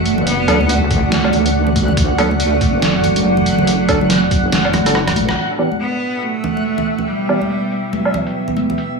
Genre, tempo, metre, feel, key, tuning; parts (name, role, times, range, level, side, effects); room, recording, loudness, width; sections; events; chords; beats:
deep dubstep; 141 BPM; 4/4; swing 59% on 16ths, half-time; E minor; A4 = 440 Hz
clear cello; melody; 0.0-8.6 s; F#3 to B3; -21 LUFS; right 2 dB; dub echo
deep dark ambient pad; sustained chords; 0.0-9.0 s; A3 to G5; -20 LUFS; right 3 dB; chorus, built-in reverb
wobble bass; bass; 0.0-5.4 s; F#1 to D2; -19 LUFS; equal; chorus
backwards swelling texture; texture; 0.0-9.0 s; E5 to F#5; -24 LUFS; left 2 dB; built-in reverb
trip hop sampler-style drum kit; drums; 0.1-8.9 s; hi-hat, rim click, snare drum, woodblock; -20 LUFS; right 1 dB; low-pass filter on snare, studio reverb, low-pass filter on hats, low-pass filter on perc
congas; percussion; 0.2-8.8 s; -24 LUFS; left 3 dB
percussive organ stab; stabs; 0.5-7.4 s; E3 to A4; -24 LUFS; right 3 dB; chorus, dub echo
electronic kick drum; drums; 0.9-4.4 s; -18 LUFS; equal; studio reverb
light reverb; small room ambience; -13 LUFS; side -4 dB against mid
0.0-5.4 A section; 5.4-9.0 B section
kick drops out 4.5-5.4; drum fill 4.7-5.4; band accent 5.3; filter sweep on drum 5.4-9.0
0.0 D; 5.4 Em
| 0.27 0.69 1.12 1.54 | 1.97 2.40 2.82 3.25 | 3.67 4.10 4.52 4.95 | 5.38 5.80 6.23 6.65 | 7.08 7.50 7.93 8.35 | 8.78